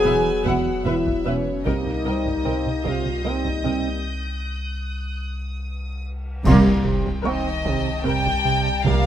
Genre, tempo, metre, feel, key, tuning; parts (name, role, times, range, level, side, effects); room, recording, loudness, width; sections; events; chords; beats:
cinematic, suspense film score; 75 BPM; 3/4; straight; A4 = 445 Hz
warm studio violin section; second line; 0.0-9.1 s; Db5 to Ab5; -31 LUFS; left 1 dB
bright trombone section; sustained chords; 0.0-9.1 s; F#3 to B3; -28 LUFS; right 2 dB
mellow French horn section; sustained chords; 0.0-9.1 s; Eb3 to Ab4; -26 LUFS; left 4 dB
dark studio cello section; bass; 0.0-9.1 s; C2 to E2; -24 LUFS; equal
warm sub bass; drone; 0.0-9.1 s; E1 to C2; -29 LUFS; left 1 dB
felt-muted upright piano; texture; 0.0-9.1 s; Bb4 to Db6; -36 LUFS; left 1 dB
rich studio violin section; texture; 0.0-9.1 s; G5 to Bb6; -36 LUFS; left 2 dB
rich studio violin section; melody; 0.1-9.1 s; Eb5 to G5; -27 LUFS; left 4 dB
warm studio viola section; accompaniment; 0.1-8.7 s; C4 to E5; -32 LUFS; equal
smooth gliding synth bass; riff; 0.1-9.1 s; E2 to C4; -26 LUFS; right 6 dB
warm studio double bass section; bass; 0.1-9.1 s; E1 to C2; -26 LUFS; right 2 dB
taiko ensemble; drums; 0.5-9.1 s; -29 LUFS; equal
cymbal swell, clash cymbals and concert bass drum; percussion; 4.0-8.0 s; -29 LUFS; equal
impact; sound effects; 6.7-8.9 s; -30 LUFS; left 1 dB
light reverb; close, detailed microphones; -20 LUFS; side -10 dB against mid
0.0-6.5 A section; 6.5-9.1 B section
break 4.1-6.5; band accent 6.5-7.3; impact 6.5-8.9
0.0 Esus2; 1.7 Cm7
0.06 0.85 | 1.66 2.46 3.25 | 4.05 4.86 5.66 | 6.46 7.25 8.05 | 8.86